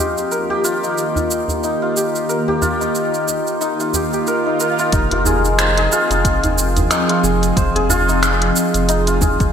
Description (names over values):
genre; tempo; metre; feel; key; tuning
organic downtempo; 91 BPM; 4/4; swing 57% on 16ths; F minor; A4 = 440 Hz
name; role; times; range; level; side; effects
ethereal airy pad; sustained chords; 0.0-9.5 s; Eb3 to G5; -22 LUFS; equal; ensemble chorus, built-in reverb, sidechain pumping
santur; arpeggios; 0.0-9.5 s; Eb4 to C5; -18 LUFS; left 1 dB; ping-pong delay
organic electronic drum kit; drums; 0.2-9.5 s; cabasa, finger snaps, hi-hat; -22 LUFS; right 2 dB; overdrive, gated reverb
djembe; percussion; 0.2-9.4 s; none; -24 LUFS; right 1 dB; none
swell; sound effects; 4.1-4.9 s; none; -27 LUFS; right 6 dB; none
warm sub bass; bass; 4.9-9.5 s; F1; -20 LUFS; equal; sidechain pumping
electronic kick drum; drums; 4.9-9.5 s; none; -19 LUFS; equal; overdrive
room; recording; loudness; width
wet lush hall reverb, RT60 2.7 s; bright 1980s-style digital production; -15 LUFS; side -8 dB against mid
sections
0.0-4.9 A section; 4.9-9.5 B section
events
swell 4.1-4.9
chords
0.0 Ebadd9; 4.9 Fm7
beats
0.31 0.97 1.63 | 2.29 2.95 3.61 4.27 | 4.93 5.59 6.25 6.91 | 7.57 8.22 8.88